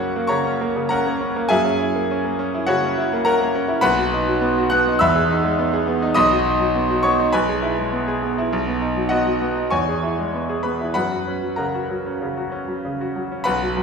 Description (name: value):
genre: classical, virtuoso piano study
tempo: 95-104 BPM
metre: 4/4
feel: rubato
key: unclear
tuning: A4 = 440 Hz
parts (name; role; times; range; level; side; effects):
- bright concert grand piano; solo; 0.0-13.8 s; B1 to F#6; -18 LUFS; equal; none
room: wet recital hall reverb, RT60 1.6 s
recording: heard from further back in the room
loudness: -18 LUFS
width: side -5 dB against mid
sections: 0.0-13.4 A section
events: none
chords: 0.0 F#; 1.5 F#9; 3.8 B; 5.0 Emaj7; 6.2 B; 7.3 E/B; 8.5 B; 9.7 E; 10.9 F#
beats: 0.30 0.89 | 1.49 2.08 2.67 3.25 | 3.83 4.42 5.00 5.58 | 6.16 6.75 7.33 7.91 | 8.50 9.09 9.71 10.33 | 10.95 11.58 12.20 12.83 | 13.45